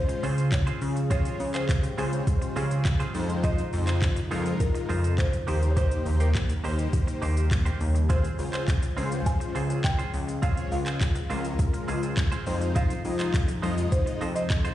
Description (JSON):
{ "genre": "dance-pop", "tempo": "103 BPM", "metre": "4/4", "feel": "straight", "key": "F minor", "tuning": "A4 = 440 Hz", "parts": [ { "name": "buzzing marimba with soft mallets", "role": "melody", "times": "0.0-14.7 s", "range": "Bb4 to Ab5", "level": "-36 LUFS", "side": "right 1 dB", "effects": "digital delay" }, { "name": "big bright polysynth", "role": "accompaniment", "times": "0.0-14.2 s", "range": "Ab3 to Eb5", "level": "-35 LUFS", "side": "left 3 dB", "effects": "analog chorus, sidechain pumping" }, { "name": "chorused pulse-width pad", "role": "sustained chords", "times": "0.0-14.7 s", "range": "C3 to G4", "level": "-36 LUFS", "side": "left 2 dB", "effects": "sidechain pumping" }, { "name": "direct-recorded clean electric guitar", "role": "riff", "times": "0.1-14.7 s", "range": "Ab3 to C5", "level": "-37 LUFS", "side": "right 6 dB", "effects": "lush chorus" }, { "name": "smooth R&B drum kit", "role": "drums", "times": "0.1-14.7 s", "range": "handclaps, hi-hat, kick drum, shaker", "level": "-27 LUFS", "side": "equal", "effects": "none" }, { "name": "egg shaker", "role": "percussion", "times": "0.1-14.7 s", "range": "none", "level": "-54 LUFS", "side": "left 6 dB", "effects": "none" }, { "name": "chorused synth bass", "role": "bass", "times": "0.2-14.7 s", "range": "Db2 to Db3", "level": "-26 LUFS", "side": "equal", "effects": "sidechain pumping" } ], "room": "light reverb, digital ambience", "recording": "played on a big sound system in a bare room, large studio reverb, nothing above 10.4 kHz", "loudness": "-24 LUFS", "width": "side -13 dB against mid", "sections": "0.0-14.7 A section", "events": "none", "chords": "0.0 Dbmaj7; 3.1 Fm7; 5.5 Cm7; 8.1 Dbmaj7; 12.5 Fm7", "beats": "0.53 | 1.11 1.69 2.27 2.85 | 3.44 4.02 4.60 5.18 | 5.77 6.35 6.93 7.51 | 8.10 8.68 9.26 9.85 | 10.43 11.01 11.59 12.18 | 12.76 13.34 13.92 14.51" }